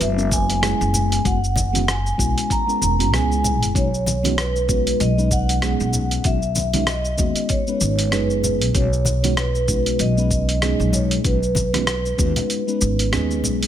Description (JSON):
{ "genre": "sunset chillout", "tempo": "96 BPM", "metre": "4/4", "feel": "swing 57% on 16ths", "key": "B major", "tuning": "A4 = 440 Hz", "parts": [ { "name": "vibraphone with soft mallets", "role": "melody", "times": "0.0-13.4 s", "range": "B4 to A#5", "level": "-24 LUFS", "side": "right 1 dB", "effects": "digital delay" }, { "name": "mellow FM electric piano", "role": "accompaniment", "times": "0.0-13.7 s", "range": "G#3 to B4", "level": "-24 LUFS", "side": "moving between left 7 dB and right 8 dB", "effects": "chorus, auto-pan" }, { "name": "upright bass", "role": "bass", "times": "0.0-13.7 s", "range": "E1 to D#2", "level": "-22 LUFS", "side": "equal", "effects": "none" }, { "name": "dusty soul sampler-style drum kit", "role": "drums", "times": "0.0-13.7 s", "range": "hi-hat, rim click, shaker", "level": "-24 LUFS", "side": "equal", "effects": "overdrive" }, { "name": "electronic kick drum", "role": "drums", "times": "0.3-12.3 s", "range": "none", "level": "-23 LUFS", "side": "equal", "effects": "overdrive" }, { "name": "congas", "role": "percussion", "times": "0.9-13.6 s", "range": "none", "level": "-28 LUFS", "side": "left 3 dB", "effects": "none" } ], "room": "light reverb, small room ambience", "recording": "none", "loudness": "-17 LUFS", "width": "side -10 dB against mid", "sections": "0.0-13.7 A section", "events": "kick drops out 12.5-13.7", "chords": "0.0 F#9sus4; 3.8 B6" }